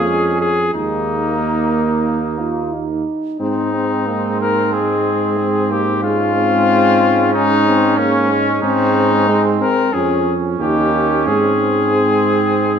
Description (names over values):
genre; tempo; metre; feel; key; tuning
classical, brass quintet; 91 BPM; 4/4; straight; Ab major; A4 = 441 Hz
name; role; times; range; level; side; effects
mellow cornet; melody; 0.0-12.8 s; Db4 to Bb4; -18 LUFS; left 5 dB; none
mellow trumpet; second line; 0.0-12.8 s; Bb3 to Db4; -22 LUFS; right 8 dB; none
clear euphonium; accompaniment; 0.0-12.8 s; Ab3 to F4; -22 LUFS; right 4 dB; none
warm French horn; accompaniment; 0.0-12.8 s; Ab3 to Eb4; -21 LUFS; left 3 dB; none
mellow tuba; bass; 0.0-12.8 s; Eb2 to Ab2; -21 LUFS; right 4 dB; none
room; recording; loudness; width
wet recital hall reverb, RT60 1.3 s; none; -14 LUFS; side -7 dB against mid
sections
0.0-12.8 A section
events
none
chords
0.0 Db/F; 0.7 Ebsus4; 2.1 Eb5; 3.4 Ab; 6.0 Db/Ab; 8.6 Ab; 9.9 Db/F; 10.6 Eb7; 11.3 Ab